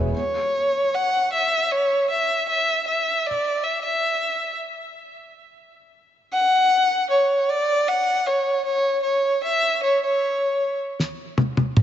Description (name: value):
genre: pop ballad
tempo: 78 BPM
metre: 4/4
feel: straight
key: unclear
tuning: A4 = 440 Hz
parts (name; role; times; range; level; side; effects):
- warm violin; melody; 0.2-10.8 s; C#5 to F#5; -19 LUFS; equal; slapback echo
- damped 70s drum kit; drums; 11.0-11.8 s; snare drum, toms; -20 LUFS; equal; none
room: moderate lush hall reverb, RT60 2.5 s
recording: big arena sound, nothing above 7.7 kHz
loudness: -19 LUFS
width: side -10 dB against mid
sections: 0.1-11.8 A section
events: drum fill 11.0-11.8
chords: none